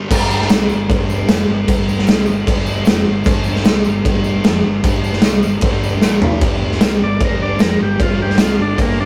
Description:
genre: garage rock duo or trio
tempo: 152 BPM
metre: 4/4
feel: straight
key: unclear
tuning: A4 = 441 Hz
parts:
  - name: thick fuzz guitar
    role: riff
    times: 0.0-9.1 s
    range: F2 to C4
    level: -24 LUFS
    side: equal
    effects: distortion
  - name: hollow-body short-scale fingered electric bass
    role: bass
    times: 0.1-9.1 s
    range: F1 to C2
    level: -26 LUFS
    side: equal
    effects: none
  - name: raw garage drum kit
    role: drums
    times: 0.1-8.9 s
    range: crash cymbal, kick drum, snare drum, toms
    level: -16 LUFS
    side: equal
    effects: none
  - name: tambourine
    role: percussion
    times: 0.1-8.5 s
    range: none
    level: -40 LUFS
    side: equal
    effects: none
  - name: overdriven combo organ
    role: melody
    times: 7.0-9.1 s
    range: Bb3 to D5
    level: -23 LUFS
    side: equal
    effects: none
room: light reverb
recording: rough rehearsal-room recording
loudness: -15 LUFS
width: mono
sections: 0.1-6.4 A section; 6.4-9.1 B section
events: drum fill 6.0-6.4; transistor combo organ solo 6.4-9.1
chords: 0.1 G5; 6.0 Bb5; 6.4 G5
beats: | 0.11 0.50 0.90 1.29 | 1.68 2.08 2.47 2.87 | 3.26 3.65 4.05 4.44 | 4.84 5.23 5.63 6.02 | 6.42 6.81 7.21 7.60 | 8.00 8.39 8.79

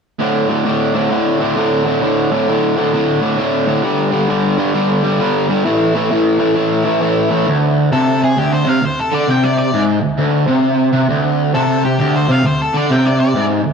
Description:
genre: rock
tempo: 132 BPM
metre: 4/4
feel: swing 64% on 8ths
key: unclear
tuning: A4 = 440 Hz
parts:
  - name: overdriven semi-hollow guitar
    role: riff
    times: 0.2-13.7 s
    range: D2 to A3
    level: -13 LUFS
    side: equal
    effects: spring reverb
  - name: octave-fuzz lead guitar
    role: melody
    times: 7.9-13.4 s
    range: G4 to G5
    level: -19 LUFS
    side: left 1 dB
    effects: distortion
room: wet stone room reverb, RT60 1.2 s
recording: rough rehearsal-room recording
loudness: -13 LUFS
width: side -6 dB against mid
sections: 0.2-7.5 A section; 7.5-13.7 B section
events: none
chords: 0.2 D5; 3.8 G5; 5.7 A5; 7.5 N.C.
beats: | 0.21 0.66 1.12 1.57 | 2.03 2.48 2.94 3.39 | 3.84 4.30 4.75 5.21 | 5.66 6.11 6.57 7.02 | 7.47 7.92 8.38 8.83 | 9.28 9.73 10.19 10.64 | 11.09 11.54 12.00 12.45 | 12.90 13.36

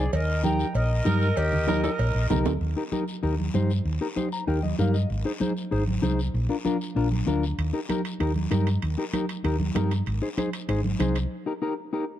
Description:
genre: latin, cumbia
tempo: 193 BPM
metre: 4/4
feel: straight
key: Eb major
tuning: A4 = 439 Hz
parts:
  - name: accordion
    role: melody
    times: 0.0-2.3 s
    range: Ab4 to Bb5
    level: -29 LUFS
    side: left 1 dB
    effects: none
  - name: mellow electric guitar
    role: accompaniment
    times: 0.0-12.0 s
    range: D4 to Bb5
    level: -29 LUFS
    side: left 3 dB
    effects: none
  - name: hollow-body short-scale fingered electric bass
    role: bass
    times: 0.0-11.2 s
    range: Ab1 to G2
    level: -25 LUFS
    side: equal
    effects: none
  - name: congas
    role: percussion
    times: 0.1-11.2 s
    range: none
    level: -31 LUFS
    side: right 2 dB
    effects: none
  - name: cowbell and timbales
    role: percussion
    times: 0.1-2.5, 7.6-11.3 s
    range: none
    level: -34 LUFS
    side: right 6 dB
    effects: none
  - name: guiro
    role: percussion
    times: 0.1-11.3 s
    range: none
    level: -43 LUFS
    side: left 6 dB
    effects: none
  - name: raspy tenor saxophone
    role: second line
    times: 1.1-2.4 s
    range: G4 to Bb4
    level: -32 LUFS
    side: right 3 dB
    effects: none
room: light reverb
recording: dark, warm production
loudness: -23 LUFS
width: side -12 dB against mid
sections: 0.0-2.6 A section; 2.6-12.2 B section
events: drum fill 1.7-2.6; clean electric guitar fill 4.2-5.1; break 11.3-12.2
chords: 0.1 Eb; 5.1 Ab; 6.3 Bb; 7.6 Eb; 10.1 Ab; 11.3 Eb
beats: | 0.13 0.44 0.75 1.06 | 1.37 1.68 1.99 2.30 | 2.61 2.92 3.23 3.54 | 3.86 4.17 4.48 4.79 | 5.10 5.41 5.72 6.03 | 6.34 6.65 6.96 7.27 | 7.58 7.89 8.21 8.52 | 8.83 9.14 9.45 9.76 | 10.07 10.38 10.69 11.00 | 11.31 11.62 11.93

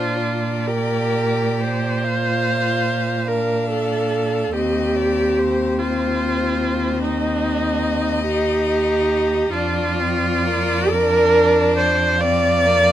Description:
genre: classical, slow romantic movement for string quartet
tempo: 38-49 BPM (dotted quarters)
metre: 12/8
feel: rubato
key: Bb major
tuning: A4 = 437 Hz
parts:
  - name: clear violin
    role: melody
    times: 0.0-12.9 s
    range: C5 to F5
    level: -27 LUFS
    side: left 6 dB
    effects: none
  - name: rich violin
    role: second line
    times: 0.0-12.9 s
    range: Bb3 to G4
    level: -25 LUFS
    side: left 4 dB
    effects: none
  - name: rich viola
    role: accompaniment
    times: 0.0-12.9 s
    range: Eb4 to D5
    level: -19 LUFS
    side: right 1 dB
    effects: none
  - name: rich cello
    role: bass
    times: 0.0-12.9 s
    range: Eb2 to Bb2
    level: -24 LUFS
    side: right 3 dB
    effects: none
room: light reverb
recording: close, detailed microphones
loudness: -17 LUFS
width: side -12 dB against mid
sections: 0.0-12.9 A section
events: none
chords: 0.0 Bb; 4.5 Cm/Eb; 9.5 Bb/F; 12.2 F5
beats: 0.68 2.03 3.28 | 4.54 5.80 7.03 8.25 | 9.54 10.92 12.21

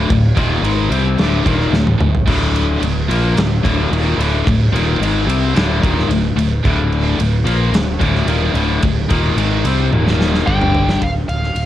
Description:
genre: hard rock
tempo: 110 BPM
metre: 4/4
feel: straight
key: unclear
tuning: A4 = 440 Hz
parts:
  - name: cranked stack guitar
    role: riff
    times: 0.0-11.0 s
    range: D2 to C4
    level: -18 LUFS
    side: left 5 dB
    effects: overdrive, cassette tape
  - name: heavy high-gain guitar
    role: riff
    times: 0.0-11.0 s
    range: D2 to C4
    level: -22 LUFS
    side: right 8 dB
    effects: distortion, cassette tape
  - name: modern bright fingered electric bass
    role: bass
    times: 0.0-11.7 s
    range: D1 to C2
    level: -18 LUFS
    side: equal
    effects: none
  - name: huge arena drum kit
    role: drums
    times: 0.1-11.7 s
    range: crash cymbal, kick drum, ride cymbal, snare drum, toms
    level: -19 LUFS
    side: right 1 dB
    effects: none
  - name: high-gain lead guitar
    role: melody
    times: 10.5-11.7 s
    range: F5 to G5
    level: -21 LUFS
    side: equal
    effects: distortion, cassette tape
room: light reverb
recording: home recording on cassette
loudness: -13 LUFS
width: side -12 dB against mid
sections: 0.0-11.0 A section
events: drum fill 1.7-2.3, 9.9-11.0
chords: 0.0 D5; 9.9 Eb5; 10.5 G5; 11.0 Dm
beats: | 0.09 0.64 1.19 1.73 | 2.28 2.82 3.37 3.92 | 4.46 5.01 5.55 6.10 | 6.65 7.19 7.74 8.28 | 8.83 9.38 9.92 10.47 | 11.01 11.56

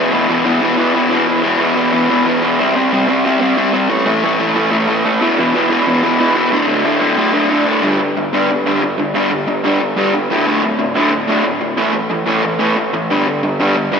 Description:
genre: punk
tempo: 183 BPM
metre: 4/4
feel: straight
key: unclear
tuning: A4 = 440 Hz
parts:
  - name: raw garage guitar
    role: solo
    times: 0.0-14.0 s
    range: D2 to C4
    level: -12 LUFS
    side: equal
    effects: overdrive, slapback echo
room: wet lush hall reverb, RT60 2.9 s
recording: big arena sound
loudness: -12 LUFS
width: side -6 dB against mid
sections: 0.0-7.8 A section; 7.8-14.0 B section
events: none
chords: 0.0 E5; 2.6 C5; 3.9 A5; 5.2 E5; 6.5 D5; 7.8 G5; 10.3 D5; 11.8 A5; 13.1 G5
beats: 0.30 0.62 0.95 | 1.28 1.61 1.94 2.27 | 2.59 2.92 3.25 3.58 | 3.90 4.23 4.56 4.89 | 5.21 5.54 5.87 6.20 | 6.53 6.85 7.18 7.51 | 7.84 8.17 8.49 8.82 | 9.15 9.48 9.81 10.14 | 10.47 10.80 11.13 11.46 | 11.79 12.12 12.45 12.78 | 13.11 13.44 13.77

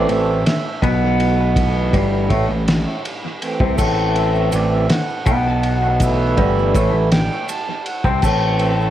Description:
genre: psychedelic rock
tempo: 54 BPM (dotted quarters)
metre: 6/8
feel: straight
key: A dorian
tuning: A4 = 439 Hz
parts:
  - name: hand-pumped harmonium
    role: sustained chords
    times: 0.0-8.9 s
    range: E3 to A5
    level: -22 LUFS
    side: right 3 dB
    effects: none
  - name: twangy electric guitar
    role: riff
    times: 0.0-8.9 s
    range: G2 to C4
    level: -20 LUFS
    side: left 1 dB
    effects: flanger, dub echo
  - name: fuzz picked electric bass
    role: bass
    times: 0.0-8.9 s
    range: G1 to C2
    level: -20 LUFS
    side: equal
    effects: overdrive
  - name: cloth-damped thuddy drum kit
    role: drums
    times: 0.1-8.8 s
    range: crash cymbal, kick drum, ride cymbal, snare drum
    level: -21 LUFS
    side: equal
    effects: dub echo
  - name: tube shaker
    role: percussion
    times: 3.8-8.4 s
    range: none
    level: -38 LUFS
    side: right 12 dB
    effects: none
room: moderate spring reverb, RT60 1.6 s, small room ambience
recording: echo-heavy mix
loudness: -15 LUFS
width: side -12 dB against mid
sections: 0.0-8.9 A section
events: harmonium solo 0.0-8.9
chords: 0.0 Am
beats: 0.46 | 1.57 2.68 | 3.79 4.90 | 6.01 7.13 | 8.24

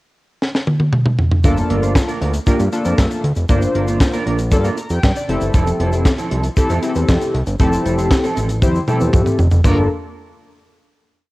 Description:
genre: early-eighties boogie funk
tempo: 117 BPM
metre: 4/4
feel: straight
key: G dorian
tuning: A4 = 436 Hz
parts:
  - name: tight funk drum kit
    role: drums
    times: 0.4-9.8 s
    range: crash cymbal, handclaps, hi-hat, kick drum, snare drum, toms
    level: -16 LUFS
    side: equal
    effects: cassette tape
  - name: chorused polysynth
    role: accompaniment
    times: 1.4-9.9 s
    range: Bb3 to Bb5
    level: -20 LUFS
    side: left 2 dB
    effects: cassette tape
  - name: mellow electric guitar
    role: riff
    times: 1.4-9.8 s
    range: F3 to C5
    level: -24 LUFS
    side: right 4 dB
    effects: analog chorus, cassette tape
  - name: fat analog bass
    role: bass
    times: 1.4-9.9 s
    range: F1 to G2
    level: -18 LUFS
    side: equal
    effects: tube saturation
  - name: egg shaker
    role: percussion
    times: 1.4-9.9 s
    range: none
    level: -38 LUFS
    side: left 3 dB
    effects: none
room: small room ambience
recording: home recording on cassette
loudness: -14 LUFS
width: side -19 dB against mid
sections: 0.0-1.4 pickup bar; 1.4-9.6 verse; 9.6-11.3 final chord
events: drum fill 0.4-1.4, 8.6-9.6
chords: 0.0 N.C.; 1.4 Gm7; 5.3 Fmaj7; 9.6 Gm7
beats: 0.41 0.93 | 1.44 1.95 2.47 2.98 | 3.49 4.00 4.52 5.03 | 5.54 6.06 6.57 7.08 | 7.59 8.11 8.62 9.13 | 9.65

